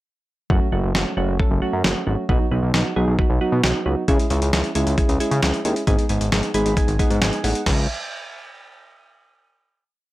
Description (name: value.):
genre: synth-pop.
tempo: 134 BPM.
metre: 4/4.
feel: straight.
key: unclear.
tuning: A4 = 440 Hz.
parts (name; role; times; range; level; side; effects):
soft electric-piano-like synth keys; accompaniment; 0.5-7.6 s; F#3 to B5; -23 LUFS; right 1 dB; chorus.
fat analog bass; bass; 0.5-7.9 s; F#1 to C#3; -21 LUFS; equal; none.
dusty soul sampler-style drum kit; drums; 0.5-7.8 s; crash cymbal, hi-hat, kick drum, snare drum; -21 LUFS; equal; none.
room: little or no reverb.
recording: dry, gritty hardware recording.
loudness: -18 LUFS.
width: side -17 dB against mid.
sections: 0.5-7.7 bridge; 7.7-9.5 final note.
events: synth keys fill 6.3-7.7.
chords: 0.5 F#m; 2.3 B; 4.1 C#m; 5.9 G#m; 7.7 N.C..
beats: | 0.50 0.95 1.40 1.84 | 2.29 2.74 3.19 3.63 | 4.08 4.53 4.98 5.42 | 5.87 6.32 6.77 7.22 | 7.66.